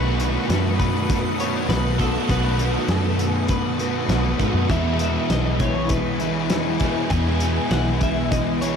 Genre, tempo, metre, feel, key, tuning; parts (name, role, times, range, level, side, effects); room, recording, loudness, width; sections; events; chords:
rock, shoegaze and dream pop; 100 BPM; 4/4; straight; E major; A4 = 440 Hz
twelve-string electric guitar; melody; 0.0-8.8 s; A4 to G#5; -30 LUFS; left 2 dB; lush chorus, analog delay
icy glass pad; sustained chords; 0.0-8.8 s; E4 to D#6; -31 LUFS; right 2 dB; chorus, built-in reverb
overdriven electric guitar; riff; 0.0-8.8 s; E2 to F#4; -25 LUFS; left 8 dB; analog chorus
overdriven semi-hollow guitar; riff; 0.0-8.8 s; E2 to F#4; -26 LUFS; right 12 dB; reverse reverb
vintage muted picked electric bass; bass; 0.0-8.8 s; B1 to G#2; -24 LUFS; equal
loose indie drum kit; drums; 0.2-8.8 s; hi-hat, kick drum, snare drum; -26 LUFS; equal
moderate huge ambient reverb, RT60 8.7 s; dreamy mix soaked in reverb; -19 LUFS; side -7 dB against mid
0.0-8.8 A section
0.0 B7; 4.7 Emaj7